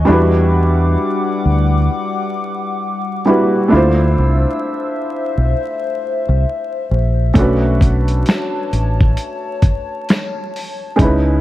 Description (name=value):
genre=lo-fi hip hop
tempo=66 BPM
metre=4/4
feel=swing 63% on 16ths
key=B minor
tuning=A4 = 441 Hz
part: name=felt-muted upright piano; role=accompaniment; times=0.0-11.4 s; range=G3 to C5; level=-17 LUFS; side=right 1 dB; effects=none
part: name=warbly tape-like pad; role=sustained chords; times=0.0-11.4 s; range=G3 to E6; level=-23 LUFS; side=left 4 dB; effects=chorus, built-in reverb
part: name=deep dub fingered electric bass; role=bass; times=0.0-11.4 s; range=A1 to E2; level=-14 LUFS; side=equal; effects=none
part: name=dusty soul sampler-style drum kit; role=drums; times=7.4-11.3 s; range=finger snaps, hi-hat, kick drum, snare drum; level=-15 LUFS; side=equal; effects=overdrive
room=light reverb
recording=vinyl crackle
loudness=-13 LUFS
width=side -15 dB against mid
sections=0.0-11.4 A section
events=none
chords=0.1 Em9; 3.7 Dm9; 7.4 Bm9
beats=| 0.08 0.99 1.90 2.81 | 3.72 4.63 5.54 6.45 | 7.35 8.26 9.17 10.08 | 10.99